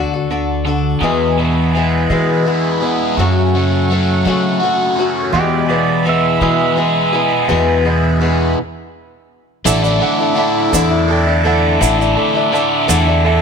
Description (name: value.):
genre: folk rock and heartland rock.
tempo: 56 BPM (dotted quarters).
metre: 6/8.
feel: straight.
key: A major.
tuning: A4 = 437 Hz.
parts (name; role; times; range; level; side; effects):
picked swing-style acoustic guitar; accompaniment; 0.0-13.4 s; E2 to A4; -18 LUFS; left 6 dB; none.
overdriven electric guitar; riff; 0.0-13.4 s; E2 to A4; -17 LUFS; right 1 dB; phaser.
upright bass; bass; 0.0-13.4 s; A1 to F#3; -18 LUFS; right 1 dB; none.
accordion; sustained chords; 1.0-13.4 s; G#3 to D6; -26 LUFS; right 3 dB; none.
pedal steel guitar; second line; 5.3-8.5 s; G4 to E5; -20 LUFS; right 10 dB; none.
bright baby grand piano; accompaniment; 9.7-13.4 s; A4 to A5; -22 LUFS; right 8 dB; none.
tube shaker; percussion; 9.7-13.1 s; none; -22 LUFS; right 14 dB; none.
room: light reverb, small room ambience.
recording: none.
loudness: -12 LUFS.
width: side -6 dB against mid.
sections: 0.0-1.0 A section; 1.0-9.7 B section; 9.7-13.4 C section.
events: stop 8.6-9.7; grand piano fill 12.9-13.4.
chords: 0.0 D; 1.0 E; 3.2 F#m; 5.3 E; 9.7 Asus4.